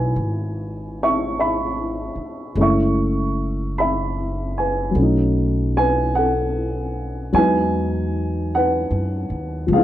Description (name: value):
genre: jazz ballad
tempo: 50 BPM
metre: 4/4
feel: swing 67% on 8ths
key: E major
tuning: A4 = 443 Hz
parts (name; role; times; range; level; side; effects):
- dark upright piano; accompaniment; 0.0-9.8 s; D#3 to C#6; -20 LUFS; equal; none
- upright bass; bass; 0.0-9.8 s; F#1 to F#2; -24 LUFS; equal; none
room: moderate large studio reverb, RT60 1.5 s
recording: close, detailed microphones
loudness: -18 LUFS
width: side -12 dB against mid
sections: 0.0-9.8 A section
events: none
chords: 0.0 C#m7; 2.6 F#m9; 5.0 B9; 7.3 Emaj9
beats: 0.17 1.37 | 2.57 3.76 4.95 6.14 | 7.33 8.52 9.70